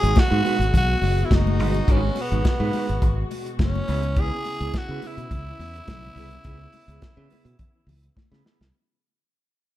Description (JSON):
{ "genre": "disco", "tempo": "105 BPM", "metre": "4/4", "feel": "straight", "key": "C# minor", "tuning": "A4 = 440 Hz", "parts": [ { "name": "growling tenor saxophone", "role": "melody", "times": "0.0-8.2 s", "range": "B3 to G#4", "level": "-28 LUFS", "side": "equal", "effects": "none" }, { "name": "mellow electric guitar", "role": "accompaniment", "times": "0.0-8.6 s", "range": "G#3 to C#5", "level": "-30 LUFS", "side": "right 4 dB", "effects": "phaser" }, { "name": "dark studio string section", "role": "sustained chords", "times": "0.0-8.7 s", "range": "B2 to F#4", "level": "-33 LUFS", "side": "left 2 dB", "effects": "none" }, { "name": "fingered electric bass", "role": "bass", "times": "0.0-8.7 s", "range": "F#1 to C#3", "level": "-24 LUFS", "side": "equal", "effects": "none" }, { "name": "warm soul drum kit", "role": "drums", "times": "0.0-8.7 s", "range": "hi-hat, kick drum, snare drum", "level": "-22 LUFS", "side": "equal", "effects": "none" }, { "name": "congas", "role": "percussion", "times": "0.2-8.4 s", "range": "none", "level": "-32 LUFS", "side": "left 7 dB", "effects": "none" } ], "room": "little or no reverb", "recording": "none", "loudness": "-20 LUFS", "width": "side -14 dB against mid", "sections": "0.0-8.7 A section", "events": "fade-out 0.0-8.7; drum fill 8.2-8.7", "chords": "0.0 G#m7; 3.9 C#m7", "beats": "0.17 0.74 1.31 | 1.88 2.45 3.02 3.59 | 4.17 4.74 5.31 5.88 | 6.45 7.02 7.59 8.16" }